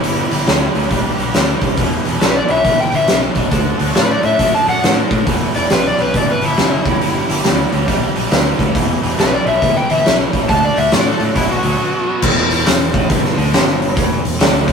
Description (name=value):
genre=blues rock power trio and southern rock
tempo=138 BPM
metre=4/4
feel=swing 64% on 8ths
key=E minor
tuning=A4 = 436 Hz
part: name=overdriven slide guitar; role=melody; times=0.0-12.2 s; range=E4 to A5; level=-17 LUFS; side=left 2 dB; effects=none
part: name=overdriven tonewheel organ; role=sustained chords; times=0.0-12.1 s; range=F#3 to B5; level=-29 LUFS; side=right 2 dB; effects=none
part: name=crunchy overdriven guitar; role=riff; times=0.0-14.7 s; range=E2 to D4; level=-21 LUFS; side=right 1 dB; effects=none
part: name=fuzz fingered electric bass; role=bass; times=0.0-14.7 s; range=E1 to A2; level=-21 LUFS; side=right 1 dB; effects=overdrive
part: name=oversized low-tuned drum kit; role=drums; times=0.0-14.7 s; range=crash cymbal, hi-hat, kick drum, snare drum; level=-15 LUFS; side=equal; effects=none
room=moderate stone room reverb, RT60 1.1 s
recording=rough rehearsal-room recording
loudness=-12 LUFS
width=side -6 dB against mid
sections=0.0-12.2 A section; 12.2-14.7 B section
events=tonewheel organ fill 1.1-1.8, 7.9-8.8; break 11.8-12.2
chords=0.0 G; 1.8 Em; 3.5 D; 5.3 Em; 6.8 G; 8.8 Em; 10.5 D; 11.4 Bm; 12.2 Em